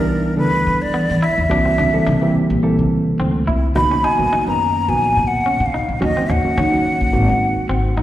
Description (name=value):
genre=jazz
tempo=106 BPM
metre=4/4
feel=swing 53% on 16ths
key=unclear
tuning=A4 = 440 Hz
part: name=breathy hollow jazz flute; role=melody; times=0.0-8.0 s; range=Bb4 to B5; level=-18 LUFS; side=left 1 dB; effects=slapback echo
part: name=reed electric piano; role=accompaniment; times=0.0-8.0 s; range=D#3 to Bb4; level=-20 LUFS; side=right 1 dB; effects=none
part: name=clean electric guitar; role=stabs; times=0.0-8.0 s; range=B3 to E4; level=-27 LUFS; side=equal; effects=lush chorus, slapback echo
part: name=upright bass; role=bass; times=0.0-8.0 s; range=Ab1 to E3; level=-20 LUFS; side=equal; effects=none
room=moderate lush hall reverb, RT60 2.3 s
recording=live gig heard through the venue's PA, recital hall reverb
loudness=-15 LUFS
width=side -13 dB against mid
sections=0.0-8.0 A section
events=none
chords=0.0 Em7; 1.5 C7#11; 3.8 Bmaj7; 6.0 Ebm7; 7.1 Ab9